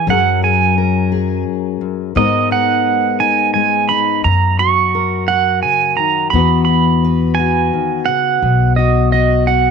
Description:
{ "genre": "acoustic folk duo or small band", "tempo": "86 BPM", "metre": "3/4", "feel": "straight", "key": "unclear", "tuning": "A4 = 440 Hz", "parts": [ { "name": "pedal steel guitar", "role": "melody", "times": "0.0-9.7 s", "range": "D#5 to C#6", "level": "-15 LUFS", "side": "right 10 dB", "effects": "none" }, { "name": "fingerpicked steel-string acoustic guitar", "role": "accompaniment", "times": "0.0-9.7 s", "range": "F#2 to B4", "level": "-18 LUFS", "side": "left 12 dB", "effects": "none" }, { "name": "upright bass", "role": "bass", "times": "0.1-9.7 s", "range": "B1 to G#2", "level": "-17 LUFS", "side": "left 1 dB", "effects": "none" } ], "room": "light reverb", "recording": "1960s-style stereo with parts hard left and right", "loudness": "-12 LUFS", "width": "side -6 dB against mid", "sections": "0.0-9.7 A section", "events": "none", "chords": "0.1 F#add9; 2.2 G#madd9; 4.2 F#; 6.3 Esus2; 8.4 B", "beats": "| 0.08 0.77 1.47 | 2.16 2.86 3.55 | 4.25 4.94 5.64 | 6.33 7.03 7.73 | 8.43 9.12" }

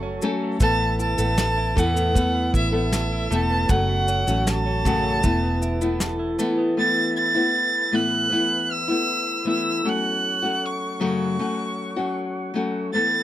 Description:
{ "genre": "acoustic pop", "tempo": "78 BPM", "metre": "4/4", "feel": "straight", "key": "A major", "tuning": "A4 = 445 Hz", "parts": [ { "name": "nylon-string guitar", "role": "accompaniment", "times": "0.0-13.2 s", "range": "F#2 to A4", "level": "-24 LUFS", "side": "left 2 dB", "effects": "none" }, { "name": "tonewheel organ", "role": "sustained chords", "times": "0.0-13.2 s", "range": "E3 to C#6", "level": "-36 LUFS", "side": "right 1 dB", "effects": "overdrive, slow rotary speaker" }, { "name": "direct-recorded clean electric guitar", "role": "arpeggios", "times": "0.0-7.4 s", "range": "E3 to A4", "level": "-31 LUFS", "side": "right 4 dB", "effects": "none" }, { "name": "vintage muted fingered electric bass", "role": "bass", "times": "0.0-6.4 s", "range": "E1 to E2", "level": "-25 LUFS", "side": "equal", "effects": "none" }, { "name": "soft brush drum kit", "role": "drums", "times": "0.2-6.6 s", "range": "kick drum, shaker, snare drum", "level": "-23 LUFS", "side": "equal", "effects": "none" }, { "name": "warm violin", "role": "melody", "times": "0.6-13.2 s", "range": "E5 to A6", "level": "-24 LUFS", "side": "right 1 dB", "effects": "none" } ], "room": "little or no reverb", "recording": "close, detailed microphones", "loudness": "-20 LUFS", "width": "side -13 dB against mid", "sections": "0.0-6.8 A section; 6.8-13.2 A section", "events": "none", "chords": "0.0 F#m; 0.6 Asus2; 3.7 F#m; 5.2 Esus4; 6.8 Asus2; 9.9 F#m", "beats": "| 0.61 1.39 2.16 2.93 | 3.70 4.47 5.24 6.01 | 6.78 7.55 8.32 9.09 | 9.86 10.63 11.40 12.17 | 12.94" }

